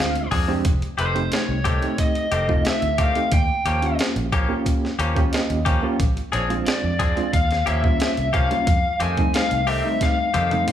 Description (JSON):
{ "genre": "straight-eighth soul blues", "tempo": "90 BPM", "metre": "4/4", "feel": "straight", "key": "unclear", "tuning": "A4 = 440 Hz", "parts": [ { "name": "lead guitar through a small cranked amp", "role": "melody", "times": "0.0-10.7 s", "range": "C5 to Ab5", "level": "-24 LUFS", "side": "left 1 dB", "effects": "overdrive" }, { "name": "overdriven reed electric piano", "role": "accompaniment", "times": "0.0-10.7 s", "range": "G3 to G5", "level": "-26 LUFS", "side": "right 2 dB", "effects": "fast tremolo" }, { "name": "vintage muted fingered electric bass", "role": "bass", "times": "0.0-10.6 s", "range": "F1 to F2", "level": "-26 LUFS", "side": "equal", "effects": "none" }, { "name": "boom bap sampler-style drum kit", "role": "drums", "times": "0.0-10.7 s", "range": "hi-hat, kick drum, snare drum, toms", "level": "-23 LUFS", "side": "equal", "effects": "none" }, { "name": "direct-recorded clean electric guitar", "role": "stabs", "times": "0.3-10.6 s", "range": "Eb3 to Ab4", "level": "-27 LUFS", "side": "left 4 dB", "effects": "none" } ], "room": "moderate large studio reverb, RT60 1.2 s", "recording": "band playing live in one room", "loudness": "-18 LUFS", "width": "side -10 dB against mid", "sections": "0.0-10.7 A section", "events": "reed electric piano fill 5.0-6.0; drum fill 10.0-10.7", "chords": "0.0 Bb9 (rootless); 0.7 F9; 3.3 Eb9; 6.0 Bb9; 7.3 Eb9; 8.7 F9" }